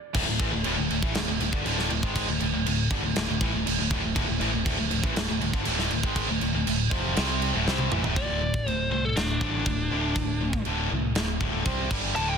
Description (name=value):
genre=hard rock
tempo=120 BPM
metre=4/4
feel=straight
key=D minor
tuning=A4 = 442 Hz
part: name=scooped high-gain guitar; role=riff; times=0.1-8.2 s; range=D2 to C4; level=-34 LUFS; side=right 1 dB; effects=distortion
part: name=tight distorted guitar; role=riff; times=0.1-12.4 s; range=D2 to C4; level=-32 LUFS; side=right 13 dB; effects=distortion
part: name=modern bright picked electric bass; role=bass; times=0.1-12.4 s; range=D1 to C2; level=-31 LUFS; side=equal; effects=none
part: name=tight metal drum kit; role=drums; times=0.1-12.3 s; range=crash cymbal, kick drum, snare drum, toms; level=-28 LUFS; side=right 1 dB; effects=soft clipping on kick
part: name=high-gain distorted guitar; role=riff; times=0.2-12.4 s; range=D2 to C4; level=-30 LUFS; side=left 10 dB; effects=distortion
part: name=biting lead guitar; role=melody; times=8.2-12.4 s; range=D4 to A5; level=-31 LUFS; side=left 1 dB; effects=overdrive, analog delay
room=little or no reverb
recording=dense, heavily limited modern master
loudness=-24 LUFS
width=side -6 dB against mid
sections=0.1-8.2 A section; 8.2-12.4 B section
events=drum fill 7.7-8.2; lead electric guitar solo 8.2-12.4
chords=0.1 Dm; 8.2 D5; 11.7 C5; 11.9 G5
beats=| 0.15 0.65 1.15 1.65 | 2.15 2.66 3.16 3.66 | 4.16 4.66 5.16 5.66 | 6.16 6.66 7.16 7.66 | 8.16 8.66 9.16 9.66 | 10.16 10.66 11.16 11.66 | 12.16